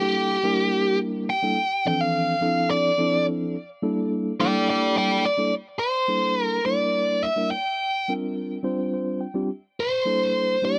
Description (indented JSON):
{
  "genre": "jazz",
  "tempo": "212 BPM (eighths)",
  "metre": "7/8",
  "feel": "straight",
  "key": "G dorian",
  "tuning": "A4 = 435 Hz",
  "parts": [
    { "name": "biting lead guitar", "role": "melody", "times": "0.0-10.8 s", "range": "G4 to G5", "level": "-25 LUFS", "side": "equal", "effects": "overdrive" },
    { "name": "mellow tine electric piano", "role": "accompaniment", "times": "0.0-10.8 s", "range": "E3 to G5", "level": "-28 LUFS", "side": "equal", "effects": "none" }
  ],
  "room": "light reverb",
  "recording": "dry, close 1970s-style studio recording",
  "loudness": "-24 LUFS",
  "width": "mono",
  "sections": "0.0-5.5 A section; 5.5-10.8 B section",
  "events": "lead electric guitar solo 0.0-5.5; tine electric piano fill 8.6-9.5",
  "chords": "0.0 Gm69; 1.6 Dm7; 3.5 Gm69; 7.5 C9sus4; 9.5 Gm69"
}